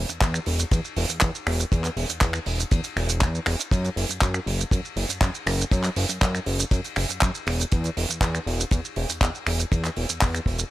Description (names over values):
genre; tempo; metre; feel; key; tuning
nu-disco, nu disco; 120 BPM; 4/4; straight; unclear; A4 = 440 Hz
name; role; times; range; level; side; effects
fat analog bass; bass; 0.0-10.6 s; E1 to F#2; -26 LUFS; equal; sidechain pumping
damped 70s drum kit; drums; 0.1-10.7 s; finger snaps, handclaps, hi-hat, ride cymbal, shaker; -26 LUFS; right 1 dB; studio ambience
kick drum; drums; 0.2-10.6 s; none; -22 LUFS; equal; studio ambience
room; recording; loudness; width
little or no reverb; none; -22 LUFS; side -16 dB against mid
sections
0.0-10.7 A section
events
none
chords
none